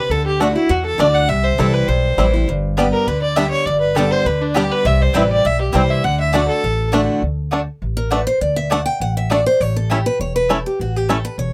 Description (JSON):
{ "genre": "bluegrass", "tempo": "202 BPM", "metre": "4/4", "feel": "straight", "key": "D mixolydian", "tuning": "A4 = 439 Hz", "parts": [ { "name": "warm fiddle", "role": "melody", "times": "0.0-6.9 s", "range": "D4 to F#5", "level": "-22 LUFS", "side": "equal", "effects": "none" }, { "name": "lap resonator guitar", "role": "second line", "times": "0.0-6.9 s", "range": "D4 to F#5", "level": "-28 LUFS", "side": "equal", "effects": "none" }, { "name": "picked acoustic archtop guitar", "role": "accompaniment", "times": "0.0-11.5 s", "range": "G2 to G5", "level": "-23 LUFS", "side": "equal", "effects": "none" }, { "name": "upright bass", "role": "bass", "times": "0.1-11.5 s", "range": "E1 to E2", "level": "-22 LUFS", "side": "equal", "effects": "none" }, { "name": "bluegrass banjo", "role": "arpeggios", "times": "0.4-11.2 s", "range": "G3 to E4", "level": "-21 LUFS", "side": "equal", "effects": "none" }, { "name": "mandolin", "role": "stabs", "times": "2.8-11.2 s", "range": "A3 to A5", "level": "-25 LUFS", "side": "equal", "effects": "none" } ], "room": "light reverb", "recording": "close, detailed microphones", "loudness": "-17 LUFS", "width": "mono", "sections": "0.0-7.2 A section; 7.2-11.5 B section", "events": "steel-string acoustic guitar solo 7.2-11.5", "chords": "0.1 D; 1.3 C; 2.5 G; 4.8 C; 6.0 D; 9.6 A", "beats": "| 0.10 0.40 0.70 0.99 | 1.29 1.59 1.88 2.18 | 2.48 2.77 3.07 3.37 | 3.66 3.96 4.26 4.55 | 4.85 5.15 5.44 5.74 | 6.04 6.33 6.63 6.93 | 7.23 7.52 7.82 8.12 | 8.41 8.71 9.01 9.31 | 9.61 9.90 10.20 10.50 | 10.79 11.09 11.39" }